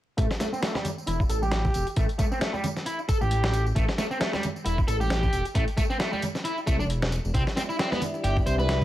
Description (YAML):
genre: breakbeat, breaks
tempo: 134 BPM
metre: 4/4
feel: swing 57% on 16ths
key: A minor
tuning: A4 = 439 Hz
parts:
  - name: distorted electric guitar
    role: riff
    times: 0.2-8.8 s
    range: G3 to C5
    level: -29 LUFS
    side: equal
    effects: distortion, low-pass filter, tape echo
  - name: dark detuned saw bass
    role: bass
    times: 0.2-8.8 s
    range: E1 to C2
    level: -26 LUFS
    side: equal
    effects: none
  - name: dusty soul sampler-style drum kit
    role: drums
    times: 0.2-8.8 s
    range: hi-hat, kick drum, snare drum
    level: -27 LUFS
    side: equal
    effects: none
  - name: tambourine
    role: drums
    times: 0.2-8.8 s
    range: none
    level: -43 LUFS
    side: right 2 dB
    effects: none
  - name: congas and bongos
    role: percussion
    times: 0.4-8.8 s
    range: none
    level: -36 LUFS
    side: right 3 dB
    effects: none
  - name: dark analog pad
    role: sustained chords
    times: 7.3-8.8 s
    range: G4 to E5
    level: -32 LUFS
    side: left 1 dB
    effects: chorus, vintage 12-bit sampler grit, sidechain pumping
room: little or no reverb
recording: vinyl crackle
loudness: -24 LUFS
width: side -14 dB against mid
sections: 0.2-8.8 A section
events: filter sweep on distorted electric guitar 0.2-8.8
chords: 0.2 A7(no3); 7.3 Cadd9